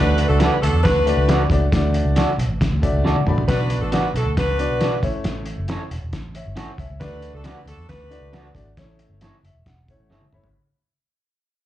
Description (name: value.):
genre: uptempo 1960s-style soul.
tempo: 136 BPM.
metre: 4/4.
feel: straight.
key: D major.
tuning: A4 = 439 Hz.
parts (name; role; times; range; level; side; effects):
bright saxophone section; second line; 0.0-8.5 s; D4 to B4; -23 LUFS; equal; slapback echo.
clear upright piano; accompaniment; 0.0-10.5 s; A3 to B5; -26 LUFS; left 2 dB; slapback echo.
vintage muted fingered electric bass; bass; 0.0-10.5 s; E1 to E2; -22 LUFS; equal; none.
cloth-damped thuddy drum kit; drums; 0.2-10.5 s; hi-hat, kick drum, snare drum, toms; -23 LUFS; equal; none.
electric guitar through a small old amp; stabs; 0.4-10.2 s; C#4 to D5; -24 LUFS; right 3 dB; slapback echo.
room: light reverb.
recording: live gig heard through the venue's PA, cassette tape, club reverb.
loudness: -17 LUFS.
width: side -13 dB against mid.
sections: 0.0-10.5 A section.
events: fade-out 0.0-10.5; upright piano fill 2.6-3.5, 9.2-10.5; drum fill 3.0-3.5, 10.1-10.5.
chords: 0.0 D; 3.5 Bm; 5.0 A; 7.0 D; 8.8 A.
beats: 0.40 0.84 1.28 | 1.72 2.16 2.60 3.04 | 3.48 3.92 4.36 4.80 | 5.25 5.68 6.13 6.57 | 7.01 7.45 7.89 8.33 | 8.77 9.22 9.66 10.10.